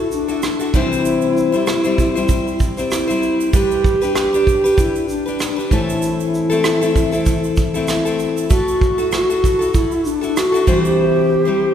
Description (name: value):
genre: acoustic pop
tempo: 96 BPM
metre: 4/4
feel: swing 55% on 16ths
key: unclear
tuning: A4 = 440 Hz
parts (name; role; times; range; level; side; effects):
- round clay ocarina; melody; 0.0-11.7 s; D4 to G4; -18 LUFS; right 1 dB; none
- picked plugged-in steel-string acoustic guitar; accompaniment; 0.0-11.7 s; A2 to C5; -19 LUFS; left 3 dB; none
- vintage brush drum kit; drums; 0.1-10.8 s; kick drum, rim click, shaker; -20 LUFS; right 2 dB; none
- tube shaker; percussion; 0.1-11.0 s; none; -34 LUFS; right 6 dB; none
room: moderate church reverb, RT60 3.0 s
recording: recorded in a church or concert hall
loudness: -14 LUFS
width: side -9 dB against mid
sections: 0.0-11.7 A section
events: none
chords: 0.0 Dadd9; 0.7 C; 3.5 G; 5.7 Am; 8.5 Dadd9/A (rootless); 10.7 C